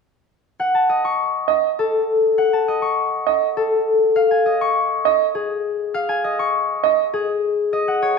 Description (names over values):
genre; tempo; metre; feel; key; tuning
classical, minimalist pattern music; 101 BPM; 3/4; straight; F# dorian; A4 = 442 Hz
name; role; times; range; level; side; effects
concert harp; melody; 0.6-8.2 s; G#4 to C#6; -18 LUFS; left 3 dB; none
clear grand piano; arpeggios; 1.5-7.0 s; D#5; -18 LUFS; right 15 dB; none
room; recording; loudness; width
moderate recital hall reverb, RT60 1.4 s; minimal, uncompressed stereo recording; -17 LUFS; side -5 dB against mid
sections
0.6-8.2 A section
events
none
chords
0.6 F#m